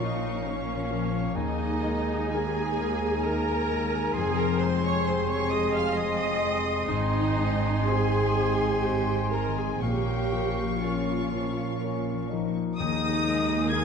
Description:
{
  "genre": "cinematic, emotional film score for orchestra",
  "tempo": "60-68 BPM",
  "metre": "3/4",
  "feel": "rubato",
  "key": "unclear",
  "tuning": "A4 = 440 Hz",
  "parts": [
    { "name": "warm symphonic violin section", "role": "melody", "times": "0.0-13.8 s", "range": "Ab5 to Ab6", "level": "-37 LUFS", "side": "left 4 dB", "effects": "none" },
    { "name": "clear clarinet", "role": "second line", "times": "0.0-13.8 s", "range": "Eb4 to Ab5", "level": "-36 LUFS", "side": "left 1 dB", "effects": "none" },
    { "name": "clear symphonic violin section", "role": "second line", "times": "0.0-13.8 s", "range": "Ab4 to F6", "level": "-38 LUFS", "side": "left 1 dB", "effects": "none" },
    { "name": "warm oboe", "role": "second line", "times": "0.0-13.8 s", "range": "Ab5 to Db6", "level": "-37 LUFS", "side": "right 1 dB", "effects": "none" },
    { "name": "rich symphonic viola section", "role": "accompaniment", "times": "0.0-13.8 s", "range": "Bb3 to F5", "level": "-30 LUFS", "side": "right 1 dB", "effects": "none" },
    { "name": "warm concert grand piano", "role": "accompaniment", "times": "0.0-13.8 s", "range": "Eb2 to C5", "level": "-34 LUFS", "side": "left 2 dB", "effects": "none" },
    { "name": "clear French horn section", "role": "sustained chords", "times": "0.0-13.8 s", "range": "Ab3 to Ab4", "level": "-34 LUFS", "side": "left 4 dB", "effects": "none" },
    { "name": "concert harp", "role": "arpeggios", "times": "0.0-13.8 s", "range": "Ab2 to Eb5", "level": "-34 LUFS", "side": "left 8 dB", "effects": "none" },
    { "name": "rich symphonic cello section", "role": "bass", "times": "0.0-13.8 s", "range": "Eb2 to Bb2", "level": "-33 LUFS", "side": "right 4 dB", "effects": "none" },
    { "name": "rich symphonic double bass section", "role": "bass", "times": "0.0-13.8 s", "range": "F1 to Eb2", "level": "-34 LUFS", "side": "right 4 dB", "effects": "none" },
    { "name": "silver concert flute", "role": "second line", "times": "12.8-13.8 s", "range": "Eb5 to Ab5", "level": "-35 LUFS", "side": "right 1 dB", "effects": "none" }
  ],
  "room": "wet scoring stage reverb, RT60 2.0 s",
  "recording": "dark, warm production",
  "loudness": "-24 LUFS",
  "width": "side -6 dB against mid",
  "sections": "0.0-12.8 A section; 12.8-13.8 B section",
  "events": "none",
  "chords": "0.0 Bbm; 1.4 Ebsus4; 4.2 Fm7; 6.9 Ab; 9.8 Bbm; 12.8 Ebsus4",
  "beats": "0.48 | 1.37 2.32 3.24 | 4.16 5.07 5.97 | 6.90 7.88 8.84 | 9.82 10.81 11.80 | 12.79 13.73"
}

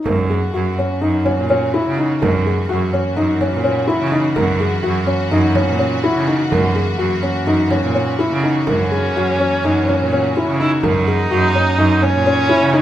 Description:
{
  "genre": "contemporary instrumental, chamber music in an uneven meter",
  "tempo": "252 BPM (eighths)",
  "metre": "9/8",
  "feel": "straight",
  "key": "F# mixolydian",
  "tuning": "A4 = 440 Hz",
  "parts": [
    { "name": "clear studio string section", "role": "sustained chords", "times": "0.0-12.8 s", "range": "E3 to F#4", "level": "-25 LUFS", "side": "left 2 dB", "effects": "none" },
    { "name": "felt-muted upright piano", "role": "arpeggios", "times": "0.0-12.8 s", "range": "C#4 to A#4", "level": "-18 LUFS", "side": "left 2 dB", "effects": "none" },
    { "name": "bright cello", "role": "bass", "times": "0.0-12.8 s", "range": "F#2 to C#3", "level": "-19 LUFS", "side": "right 2 dB", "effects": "none" },
    { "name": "frame drum", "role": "percussion", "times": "0.1-12.8 s", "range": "none", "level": "-27 LUFS", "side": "right 3 dB", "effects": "none" },
    { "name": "rich viola", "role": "second line", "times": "8.7-12.8 s", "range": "C#4 to E4", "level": "-18 LUFS", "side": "right 1 dB", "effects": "none" }
  ],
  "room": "wet recital hall reverb, RT60 1.4 s",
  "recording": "none",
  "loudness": "-14 LUFS",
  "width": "side -12 dB against mid",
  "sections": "0.1-12.8 A section",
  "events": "none",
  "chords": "0.0 F#13",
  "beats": "| 0.05 0.29 0.54 0.78 1.02 1.26 1.50 1.74 1.98 | 2.22 2.46 2.69 2.93 3.17 3.41 3.65 3.88 4.12 | 4.36 4.60 4.83 5.07 5.31 5.55 5.79 6.02 6.26 | 6.50 6.74 6.98 7.22 7.46 7.70 7.94 8.19 8.43 | 8.67 8.91 9.15 9.39 9.63 9.87 10.11 10.35 10.59 | 10.83 11.06 11.30 11.54 11.78 12.01 12.25 12.48 12.72"
}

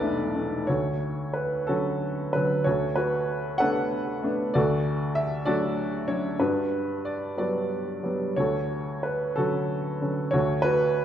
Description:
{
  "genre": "classical, lyrical solo piano",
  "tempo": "60-67 BPM (dotted quarters)",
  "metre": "6/8",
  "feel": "rubato",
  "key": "D major",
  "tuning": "A4 = 439 Hz",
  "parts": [
    { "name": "warm upright piano", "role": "solo", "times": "0.0-11.0 s", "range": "E1 to F#5", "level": "-24 LUFS", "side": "equal", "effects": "none" }
  ],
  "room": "wet scoring stage reverb, RT60 1.8 s",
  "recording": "recorded in a church or concert hall",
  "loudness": "-24 LUFS",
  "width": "side -10 dB against mid",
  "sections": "0.7-11.0 A section",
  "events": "none",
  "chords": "0.0 E7sus4; 0.7 Dmaj7; 6.4 Gmaj7; 8.4 Dmaj7",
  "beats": "| 0.69 1.69 | 2.66 3.60 | 4.54 5.46 | 6.38 7.37 | 8.37 9.37 | 10.33"
}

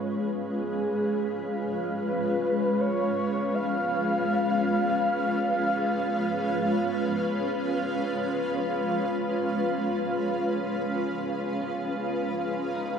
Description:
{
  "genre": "ambient",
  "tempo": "free time",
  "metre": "none",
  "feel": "none",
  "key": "Db mixolydian",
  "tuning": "A4 = 440 Hz",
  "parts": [
    { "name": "breathy flute-like synth lead", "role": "melody", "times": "0.0-7.4 s", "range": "Ab4 to F5", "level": "-29 LUFS", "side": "equal", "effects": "wide subtle chorus, analog delay" },
    { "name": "granular cloud pad", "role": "sustained chords", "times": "0.0-13.0 s", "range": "Ab3 to F5", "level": "-26 LUFS", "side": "equal", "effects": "built-in reverb" },
    { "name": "organ-like drone", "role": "drone", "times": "11.1-13.0 s", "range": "Db3 to Db4", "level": "-50 LUFS", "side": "right 2 dB", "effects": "none" },
    { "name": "clean electric guitar", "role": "arpeggios", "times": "11.6-13.0 s", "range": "Db4 to Eb4", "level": "-43 LUFS", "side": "right 3 dB", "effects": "none" }
  ],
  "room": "wet spring reverb, RT60 2.3 s",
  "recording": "echo-heavy mix",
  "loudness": "-25 LUFS",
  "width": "side -7 dB against mid",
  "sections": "0.0-8.2 A section; 8.2-13.0 B section",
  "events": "fade-in on soft synth lead 0.0-8.2; filter sweep on ambient pad 0.0-8.2",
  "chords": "0.0 Db7",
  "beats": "free time"
}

